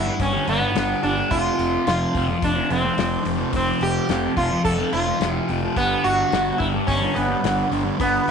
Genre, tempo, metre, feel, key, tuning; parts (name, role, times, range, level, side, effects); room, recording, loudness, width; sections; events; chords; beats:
psychedelic rock; 108 BPM; 4/4; straight; A4 = 436 Hz
sitar; melody; 0.0-8.3 s; B3 to A4; -22 LUFS; right 1 dB; slapback echo
thick fuzz guitar; riff; 0.0-8.3 s; F2 to G3; -23 LUFS; equal; distortion, phaser
fuzz fingered electric bass; bass; 0.0-8.3 s; F1 to G1; -27 LUFS; equal; overdrive
cloth-damped thuddy drum kit; drums; 0.2-8.3 s; hi-hat, kick drum, snare drum; -29 LUFS; left 5 dB
light reverb; 1960s-style stereo; -19 LUFS; side -6 dB against mid
0.0-8.3 A section
0.0 G; 1.3 F5; 5.8 Gmaj7
0.20 0.75 | 1.31 1.87 2.42 2.98 | 3.54 4.10 4.65 5.21 | 5.77 6.33 6.88 7.44 | 8.00